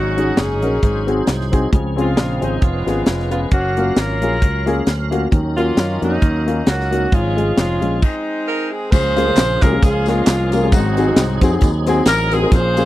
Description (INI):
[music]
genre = uptempo gospel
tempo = 133 BPM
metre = 4/4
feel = swing 55% on 8ths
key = Db major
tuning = A4 = 440 Hz
[part]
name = clear saxophone section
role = melody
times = 0.0-12.9 s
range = Gb3 to C5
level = -20 LUFS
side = equal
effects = none
[part]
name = dark upright piano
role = accompaniment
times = 0.0-12.9 s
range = Ab2 to Cb5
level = -20 LUFS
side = left 2 dB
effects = none
[part]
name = tonewheel organ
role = sustained chords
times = 0.0-12.9 s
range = Db3 to F5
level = -26 LUFS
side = right 1 dB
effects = fast rotary speaker, chorus vibrato
[part]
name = fingered electric bass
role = bass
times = 0.0-12.9 s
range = F1 to Gb2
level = -21 LUFS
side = equal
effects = none
[part]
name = crisp fusion drum kit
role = drums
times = 0.2-12.9 s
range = crash cymbal, hi-hat, kick drum, snare drum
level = -16 LUFS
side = equal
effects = none
[part]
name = tambourine and handclaps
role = percussion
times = 8.9-12.9 s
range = none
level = -31 LUFS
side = right 2 dB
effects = none
[sound]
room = studio reverb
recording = dry, close 1970s-style studio recording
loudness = -14 LUFS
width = side -15 dB against mid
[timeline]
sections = 0.0-8.9 A section; 8.9-12.9 B section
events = stop 8.0-8.9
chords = 0.0 Ab7sus4; 0.8 Ab7; 1.7 Dbmaj7; 2.6 Db7/F; 3.5 Gbmaj7; 5.3 Ebm7; 7.1 Db/Ab; 8.0 Ab; 8.9 Db6; 10.7 Ab7